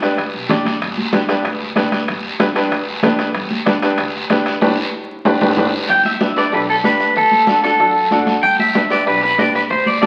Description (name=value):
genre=latin, cumbia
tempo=189 BPM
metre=4/4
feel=straight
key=G major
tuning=A4 = 437 Hz
part: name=bright upright piano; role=accompaniment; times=0.0-10.1 s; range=D4 to D5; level=-21 LUFS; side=equal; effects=none
part: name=upright bass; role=bass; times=0.0-10.1 s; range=G1 to F#2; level=-32 LUFS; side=equal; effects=none
part: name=bombo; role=percussion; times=0.0-10.1 s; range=none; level=-34 LUFS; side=equal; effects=none
part: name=guiro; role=percussion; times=0.0-10.1 s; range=none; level=-29 LUFS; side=equal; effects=none
part: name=timbales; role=percussion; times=0.0-5.6 s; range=none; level=-26 LUFS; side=equal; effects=none
part: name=congas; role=percussion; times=0.2-10.1 s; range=none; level=-24 LUFS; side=equal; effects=none
part: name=electric guitar at the edge of break-up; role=melody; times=5.9-10.1 s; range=A4 to G5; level=-16 LUFS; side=equal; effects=spring reverb
room=wet large studio reverb, RT60 1.3 s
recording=very old 78 rpm record, vinyl crackle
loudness=-16 LUFS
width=mono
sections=0.0-5.9 A section; 5.9-10.1 B section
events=band accent 4.6-5.9; drum fill 5.1-5.9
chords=0.0 G; 7.2 D; 8.4 G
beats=0.18 0.50 | 0.81 1.13 1.45 1.76 | 2.08 2.40 2.72 3.04 | 3.35 3.67 3.99 4.30 | 4.62 4.94 5.26 5.57 | 5.89 6.21 6.53 6.84 | 7.16 7.48 7.80 8.11 | 8.43 8.75 9.07 9.38 | 9.70 10.02